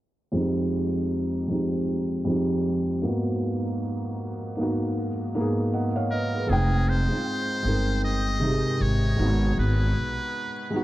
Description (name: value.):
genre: hip hop.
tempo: 78 BPM.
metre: 4/4.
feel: swing 60% on 16ths.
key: F minor.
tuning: A4 = 440 Hz.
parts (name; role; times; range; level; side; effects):
felt-muted upright piano; accompaniment; 0.3-10.8 s; F2 to G5; -25 LUFS; equal; cassette tape, low-pass filter.
trumpet with metal mute; melody; 6.1-10.8 s; Ab4 to Eb5; -30 LUFS; equal; low-pass filter, diffuse ambient delay.
upright bass; bass; 6.5-10.2 s; F1 to Cb2; -24 LUFS; equal; none.
room: moderate huge ambient reverb, RT60 6.2 s.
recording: dreamy mix soaked in reverb, vinyl crackle, low-pass filter.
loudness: -23 LUFS.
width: side -16 dB against mid.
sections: 0.3-6.5 A section; 6.5-10.8 B section.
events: filter sweep 0.3-6.5.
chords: 0.3 Fm7; 3.0 Abm7; 6.5 Fm7; 9.2 Abm7.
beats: | 0.34 1.10 1.87 2.64 | 3.41 4.18 4.95 5.72 | 6.49 7.26 8.03 8.80 | 9.57 10.34.